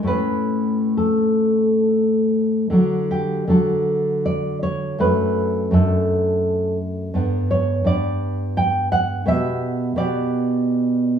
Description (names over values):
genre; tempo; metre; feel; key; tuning
romantic piece for solo classical guitar; 66-87 BPM; 3/4; rubato; D major; A4 = 440 Hz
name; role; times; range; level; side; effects
nylon-string guitar; solo; 0.0-11.2 s; F#2 to G5; -18 LUFS; equal; none
room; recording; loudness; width
moderate stone room reverb, RT60 1.1 s; band playing live in one room, small room reverb; -18 LUFS; side -8 dB against mid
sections
0.0-2.7 A section; 2.7-11.2 B section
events
none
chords
0.1 A; 2.7 D; 5.0 D/F#; 7.2 G; 9.3 G/B